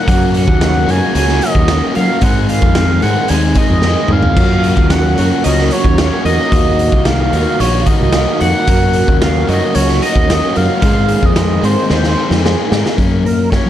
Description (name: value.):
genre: indie rock.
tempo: 112 BPM.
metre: 4/4.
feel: straight.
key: Gb lydian.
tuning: A4 = 439 Hz.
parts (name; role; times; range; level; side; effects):
sync lead; melody; 0.0-13.7 s; Bb4 to Ab5; -18 LUFS; equal; chorus, slapback echo.
electric guitar through a small old amp; riff; 0.0-13.0 s; Eb3 to F5; -21 LUFS; right 9 dB; ensemble chorus.
overdriven electric guitar; riff; 0.0-13.7 s; Gb2 to Ab4; -19 LUFS; left 8 dB; none.
fingered electric bass; bass; 0.1-13.7 s; Bb1 to Gb3; -15 LUFS; equal; none.
raw garage drum kit; drums; 0.1-13.6 s; crash cymbal, hi-hat, kick drum, snare drum, toms; -15 LUFS; equal; none.
mellow tine electric piano; second line; 4.4-12.9 s; F4 to Bb4; -25 LUFS; left 2 dB; medium stereo tremolo, slapback echo.
warm analog pad; sustained chords; 4.4-13.0 s; Eb3 to Gb4; -25 LUFS; right 3 dB; none.
room: light reverb, small room ambience.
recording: dark, warm production.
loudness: -10 LUFS.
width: side -11 dB against mid.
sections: 0.0-13.0 A section.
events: drum fill 3.8-4.4, 11.9-13.0.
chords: 0.1 Gb; 2.2 Abadd9; 4.4 Gb; 6.5 Ebmadd9; 8.7 Gb; 10.8 Abadd9; 13.0 Gb.